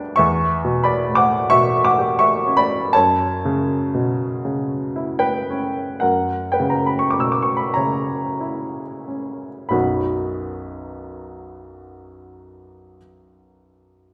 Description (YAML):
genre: classical, romantic nocturne for solo piano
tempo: 29-45 BPM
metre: 4/4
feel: rubato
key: unclear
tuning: A4 = 439 Hz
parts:
  - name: clear upright piano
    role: solo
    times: 0.0-14.1 s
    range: G1 to E6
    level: -20 LUFS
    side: equal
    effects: none
room: wet recital hall reverb, RT60 1.4 s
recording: recorded in a church or concert hall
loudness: -20 LUFS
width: mono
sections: 0.0-9.7 A section; 9.7-14.1 B section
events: slowing down 0.0-9.7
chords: 0.2 C#m7b5/E; 2.9 F#7sus4; 6.0 F#7; 9.7 B